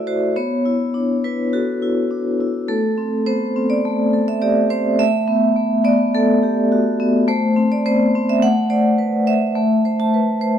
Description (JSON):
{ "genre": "classical, contemporary piece for solo vibraphone", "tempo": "104 BPM", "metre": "4/4", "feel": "rubato", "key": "A dorian", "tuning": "A4 = 440 Hz", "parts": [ { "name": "vibraphone with medium hard mallets", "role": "solo", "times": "0.0-10.6 s", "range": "A3 to A5", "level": "-16 LUFS", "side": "equal", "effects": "none" } ], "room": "light reverb", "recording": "close, detailed microphones", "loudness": "-16 LUFS", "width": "side -9 dB against mid", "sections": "0.0-10.6 A section", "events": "none", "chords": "0.4 Bm11; 2.7 Amadd9; 5.0 G69/A; 7.3 Am; 9.5 Amadd9" }